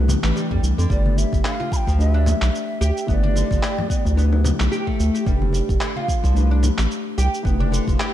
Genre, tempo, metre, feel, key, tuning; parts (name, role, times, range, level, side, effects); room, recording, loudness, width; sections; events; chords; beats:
organic downtempo; 110 BPM; 4/4; swing 56% on 16ths; G mixolydian; A4 = 440 Hz
mellow electric guitar; accompaniment; 0.0-8.1 s; E3 to B4; -27 LUFS; left 3 dB; sidechain pumping, ping-pong delay
round analog bass; bass; 0.0-8.0 s; F1 to F2; -18 LUFS; equal; sidechain pumping
electronic shaker and handclaps; drums; 0.1-8.1 s; -30 LUFS; equal
congas and bongos; percussion; 0.1-8.0 s; -31 LUFS; left 3 dB
oud; arpeggios; 0.4-8.1 s; D3 to G4; -28 LUFS; right 2 dB; ping-pong delay
electronic kick drum; drums; 0.5-8.0 s; -23 LUFS; equal
breathy mellow ney; melody; 0.9-4.2 s; D5 to B5; -29 LUFS; equal; ping-pong delay
light reverb; dark, warm production; -18 LUFS; side -12 dB against mid
0.0-8.1 A section
0.0 F6; 0.9 G; 5.3 F6
0.36 | 0.90 1.45 1.99 2.54 | 3.08 3.63 4.18 4.72 | 5.27 5.81 6.36 6.90 | 7.45 7.99